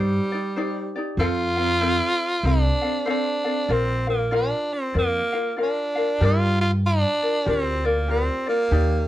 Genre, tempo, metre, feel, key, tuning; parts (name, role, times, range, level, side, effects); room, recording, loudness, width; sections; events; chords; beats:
Hawaiian; 96 BPM; 4/4; swing 61% on 8ths; Bb major; A4 = 440 Hz
raspy tenor saxophone; melody; 0.0-9.1 s; G3 to F4; -24 LUFS; right 1 dB
ukulele; accompaniment; 0.0-9.1 s; C4 to F5; -26 LUFS; left 2 dB
upright bass; bass; 0.0-9.1 s; Bb1 to G2; -22 LUFS; equal
light reverb; worn, warbling old tape, cassette tape, warbly pitch drift; -20 LUFS; side -14 dB against mid
0.0-6.2 A section; 6.2-9.1 B section
0.0 Cmadd9; 1.2 F; 3.7 Bb; 6.2 Gm7
0.56 | 1.19 1.81 2.44 3.07 | 3.70 4.32 4.95 5.58 | 6.21 6.83 7.46 8.09 | 8.72